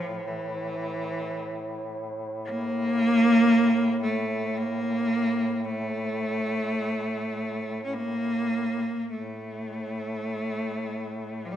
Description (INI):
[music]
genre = caucasian folk, Caucasian lament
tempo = free time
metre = none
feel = none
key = unclear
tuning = A4 = 439 Hz
[part]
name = clear cello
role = melody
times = 0.0-11.6 s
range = E3 to C#4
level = -25 LUFS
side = equal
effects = none
[part]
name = warm duduk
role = drone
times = 0.0-11.6 s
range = A2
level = -34 LUFS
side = equal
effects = none
[sound]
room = moderate concert hall reverb, RT60 2.0 s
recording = minimal, uncompressed stereo recording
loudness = -25 LUFS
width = side -10 dB against mid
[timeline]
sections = 0.0-9.1 A section; 9.1-11.6 B section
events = none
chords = none